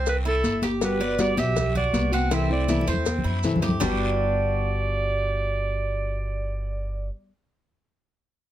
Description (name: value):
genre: latin, Cuban son and guajira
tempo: 160 BPM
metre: 4/4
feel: straight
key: G major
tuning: A4 = 438 Hz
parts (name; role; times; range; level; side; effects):
- clear clarinet; melody; 0.0-7.1 s; A4 to F#5; -28 LUFS; right 2 dB; none
- Cuban tres; arpeggios; 0.0-7.1 s; G3 to D5; -30 LUFS; right 4 dB; none
- upright bass; bass; 0.0-7.1 s; G1 to G2; -27 LUFS; equal; none
- congas; percussion; 0.1-3.9 s; none; -28 LUFS; left 1 dB; none
- cowbell and bongos; percussion; 0.1-3.9 s; none; -32 LUFS; left 7 dB; none
- guiro; percussion; 0.1-3.9 s; none; -40 LUFS; left 4 dB; none
- maracas; percussion; 0.1-3.9 s; none; -38 LUFS; right 6 dB; none
- nylon-string guitar; accompaniment; 0.8-7.3 s; C3 to F#4; -28 LUFS; left 4 dB; none
room: light reverb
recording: close, detailed microphones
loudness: -22 LUFS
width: side -12 dB against mid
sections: 0.0-3.8 A section; 3.8-6.8 B section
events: drum fill 2.7-3.8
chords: 0.0 C6; 0.8 Gmaj7; 2.3 C6; 3.8 Gmaj7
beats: 0.07 0.44 | 0.82 1.19 1.56 1.94 | 2.31 2.69 3.06 3.44 | 3.81 4.18 4.56 4.93 | 5.31 5.68 6.06 6.43